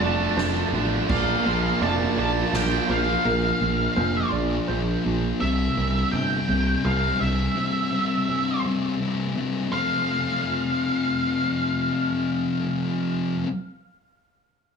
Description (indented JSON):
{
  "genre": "post-rock",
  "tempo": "84 BPM",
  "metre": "3/4",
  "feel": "straight",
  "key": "F major",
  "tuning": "A4 = 440 Hz",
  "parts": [
    { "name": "octave-fuzz lead guitar", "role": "melody", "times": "0.0-13.4 s", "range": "E5 to A5", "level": "-27 LUFS", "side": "equal", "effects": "distortion, tape echo" },
    { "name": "felt-muted upright piano", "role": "arpeggios", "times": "0.0-5.4 s", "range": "Bb4 to D5", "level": "-32 LUFS", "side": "right 7 dB", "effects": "tape echo" },
    { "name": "thick fuzz guitar", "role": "riff", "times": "0.0-13.5 s", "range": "F2 to F4", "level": "-24 LUFS", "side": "left 3 dB", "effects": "distortion" },
    { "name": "tight distorted guitar", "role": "riff", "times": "0.0-3.2 s", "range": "Bb2 to D4", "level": "-27 LUFS", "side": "right 11 dB", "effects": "distortion" },
    { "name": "fingered electric bass", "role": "bass", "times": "0.0-7.5 s", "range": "F1 to C2", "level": "-26 LUFS", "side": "right 2 dB", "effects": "none" },
    { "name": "soft-mallet drum kit", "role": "drums", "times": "0.4-2.7 s", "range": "crash cymbal, kick drum, ride cymbal, snare drum", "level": "-31 LUFS", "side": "right 3 dB", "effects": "none" }
  ],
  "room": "light reverb, small room ambience",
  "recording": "none",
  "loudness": "-21 LUFS",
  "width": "side -6 dB against mid",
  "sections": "0.0-9.7 A section; 9.7-14.0 B section",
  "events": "none",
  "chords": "0.0 F; 1.1 Bb; 5.4 C; 9.7 F",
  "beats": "0.38 | 1.10 1.82 2.54 | 3.26 3.98 4.69 | 5.41 6.13 6.85 | 7.57 8.29 9.00 | 9.72 10.44 11.16 | 11.88 12.60 13.31"
}